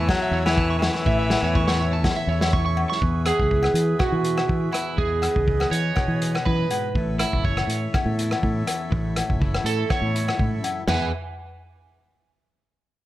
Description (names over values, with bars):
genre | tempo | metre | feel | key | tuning
highlife guitar band | 122 BPM | 4/4 | swing 54% on 16ths | E major | A4 = 440 Hz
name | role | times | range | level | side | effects
clear alto saxophone | melody | 0.0-2.5 s | E3 to F#3 | -25 LUFS | left 2 dB | none
electric guitar at the edge of break-up | accompaniment | 0.0-11.1 s | E2 to G#4 | -32 LUFS | left 5 dB | ensemble chorus
accordion | sustained chords | 0.0-11.1 s | G#4 to E5 | -34 LUFS | right 1 dB | none
electric guitar at the edge of break-up | arpeggios | 0.0-11.1 s | E4 to C#6 | -26 LUFS | right 4 dB | spring reverb, slapback echo
fingered electric bass | bass | 0.0-11.1 s | F#1 to E3 | -24 LUFS | equal | none
vintage drum kit | drums | 0.1-11.0 s | hi-hat, kick drum, rim click, snare drum, toms | -26 LUFS | equal | none
agogo bells | percussion | 0.1-11.0 s | none | -31 LUFS | left 4 dB | none
room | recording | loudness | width
light reverb | none | -20 LUFS | side -15 dB against mid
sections
0.0-3.0 A section; 3.0-10.9 B section; 10.9-12.8 C section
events
clean electric guitar solo 3.0-10.9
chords
0.0 A; 3.0 E; 6.9 A; 10.9 E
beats
0.08 0.57 | 1.06 1.55 2.04 2.53 | 3.02 3.51 4.00 4.49 | 4.98 5.47 5.97 6.46 | 6.95 7.44 7.93 8.42 | 8.91 9.40 9.89 10.39 | 10.88